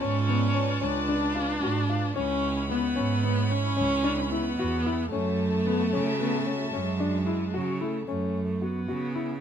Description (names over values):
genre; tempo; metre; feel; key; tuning
contemporary instrumental, chamber music in an uneven meter; 223 BPM (eighths); 11/8; straight; F# minor; A4 = 440 Hz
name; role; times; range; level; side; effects
rich viola; second line; 0.0-9.4 s; F#3 to D4; -29 LUFS; equal; none
warm chamber string section; sustained chords; 0.0-8.1 s; E4 to B5; -34 LUFS; left 2 dB; none
warm concert grand piano; arpeggios; 0.0-9.3 s; B3 to F#4; -31 LUFS; left 6 dB; none
rich cello; bass; 0.0-9.4 s; C#2 to C#3; -29 LUFS; right 4 dB; none
room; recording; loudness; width
light reverb; none; -24 LUFS; side -8 dB against mid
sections
0.0-8.1 A section; 8.1-9.4 B section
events
none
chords
0.0 C#7b9b13; 2.2 C#m7; 5.1 F#m7; 8.1 F#m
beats
0.01 0.28 0.55 0.81 1.08 1.35 1.62 1.89 | 2.16 2.43 2.70 2.97 3.24 3.51 3.78 4.05 4.32 4.58 4.85 | 5.12 5.39 5.66 5.93 6.20 6.47 6.74 7.01 7.28 7.54 7.81 | 8.08 8.35 8.62 8.89 9.16